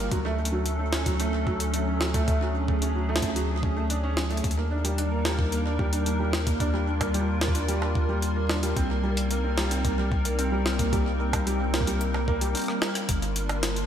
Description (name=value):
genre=IDM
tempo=111 BPM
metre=4/4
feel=straight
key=unclear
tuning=A4 = 441 Hz
part: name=hollow soft pad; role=sustained chords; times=0.0-13.9 s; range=F#3 to Bb4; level=-30 LUFS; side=left 1 dB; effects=ensemble chorus, vintage 12-bit sampler grit
part: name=felt-muted upright piano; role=arpeggios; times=0.0-12.9 s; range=F#3 to D4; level=-31 LUFS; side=right 3 dB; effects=digital delay
part: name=round analog bass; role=bass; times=0.0-13.9 s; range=G1 to Eb2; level=-28 LUFS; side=equal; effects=none
part: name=electronic kick drum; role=drums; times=0.1-13.2 s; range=none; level=-28 LUFS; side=equal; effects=small room ambience
part: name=jungle sampler-style drum kit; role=drums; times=0.1-13.9 s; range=bongos, hi-hat, rim click, snare drum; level=-31 LUFS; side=equal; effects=small room ambience, digital delay
room=moderate lush hall reverb, RT60 1.8 s, digital ambience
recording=bright 1980s-style digital production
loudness=-24 LUFS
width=side -9 dB against mid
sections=0.0-13.1 A section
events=drum fill 12.7-13.1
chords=0.1 Dmaj7; 4.4 Ebmaj7; 8.8 Cm7; 13.1 Gm7